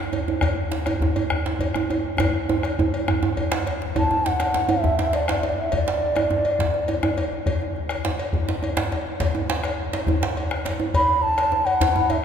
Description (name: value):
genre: west african traditional, West African drum ensemble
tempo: 137 BPM (dotted quarters)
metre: 12/8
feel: straight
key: D major pentatonic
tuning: A4 = 440 Hz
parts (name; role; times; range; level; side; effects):
- bombo; percussion; 0.1-12.2 s; none; -27 LUFS; left 1 dB; none
- cowbell; percussion; 0.1-12.2 s; none; -31 LUFS; left 2 dB; none
- djembe; percussion; 0.1-12.1 s; none; -30 LUFS; left 3 dB; none
- djembe; percussion; 0.1-12.2 s; none; -25 LUFS; right 3 dB; none
- bass bansuri; melody; 4.0-6.9, 10.9-12.2 s; D5 to B5; -22 LUFS; equal; none
room: wet cathedral reverb, RT60 5.2 s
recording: recorded in a church or concert hall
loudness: -20 LUFS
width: side -8 dB against mid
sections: 0.0-4.0 A section; 4.0-12.2 B section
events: speeding up 0.0-12.2; drum fill 2.2-4.0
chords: none